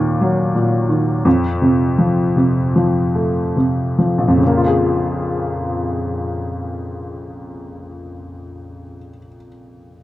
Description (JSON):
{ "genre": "folk", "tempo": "68-89 BPM", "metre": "4/4", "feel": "straight", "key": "Bb minor", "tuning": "A4 = 440 Hz", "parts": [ { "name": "clear upright piano", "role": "melody", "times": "0.0-10.0 s", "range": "Bb1 to Ab4", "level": "-16 LUFS", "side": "equal", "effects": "none" } ], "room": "moderate studio reverb, RT60 0.6 s", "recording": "dark, warm production", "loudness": "-15 LUFS", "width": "side -15 dB against mid", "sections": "0.0-4.4 A section; 4.4-8.0 B section", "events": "slowing down 0.0-4.4", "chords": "0.0 Ebm; 1.3 F; 4.4 Bbm7" }